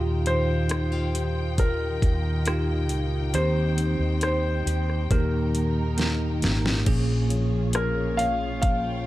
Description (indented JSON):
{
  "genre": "pop ballad",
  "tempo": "68 BPM",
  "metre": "4/4",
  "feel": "straight",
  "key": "unclear",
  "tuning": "A4 = 440 Hz",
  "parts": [
    { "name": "bell-like tine electric piano", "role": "accompaniment", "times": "0.0-9.1 s", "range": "Bb2 to Bb4", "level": "-29 LUFS", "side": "right 1 dB", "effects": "medium stereo tremolo" },
    { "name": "warm studio string section", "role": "sustained chords", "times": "0.0-9.1 s", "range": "Eb3 to G5", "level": "-36 LUFS", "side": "left 1 dB", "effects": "none" },
    { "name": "nylon-string guitar", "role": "arpeggios", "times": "0.0-9.1 s", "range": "Bb2 to Ab4", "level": "-36 LUFS", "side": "left 5 dB", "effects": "none" },
    { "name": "fretless electric bass", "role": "bass", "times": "0.0-9.0 s", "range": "Ab1 to Eb2", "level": "-26 LUFS", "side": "equal", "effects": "none" },
    { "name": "warm concert grand piano", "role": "melody", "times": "0.3-9.1 s", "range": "Bb4 to F5", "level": "-29 LUFS", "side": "equal", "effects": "none" },
    { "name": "smooth R&B drum kit", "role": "drums", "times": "0.3-8.8 s", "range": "crash cymbal, hi-hat, kick drum, rim click, snare drum", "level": "-26 LUFS", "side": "equal", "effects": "none" }
  ],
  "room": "small room ambience",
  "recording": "dark, warm production",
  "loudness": "-22 LUFS",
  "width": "side -16 dB against mid",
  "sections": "0.0-6.9 A section; 6.9-9.1 B section",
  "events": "drum fill 6.0-6.9",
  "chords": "0.0 Ebadd9; 3.3 Cm/Eb; 5.1 Eb; 6.9 Bbm7",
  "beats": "0.70 1.58 2.46 | 3.34 4.22 5.11 5.99 | 6.87 7.75 8.64"
}